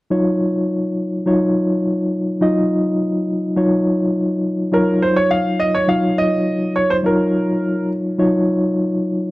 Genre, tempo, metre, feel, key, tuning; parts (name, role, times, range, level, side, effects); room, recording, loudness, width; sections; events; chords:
soul; 104 BPM; 4/4; straight; Eb minor; A4 = 440 Hz
mellow reed electric piano; accompaniment; 0.1-9.3 s; Gb3 to Eb5; -16 LUFS; equal; fast tremolo
clear concert grand piano; melody; 4.7-7.9 s; Bb4 to F5; -18 LUFS; right 1 dB
little or no reverb; dry, close 1970s-style studio recording; -15 LUFS; side -19 dB against mid
0.1-4.7 A section; 4.7-9.3 B section
0.1 Ebm9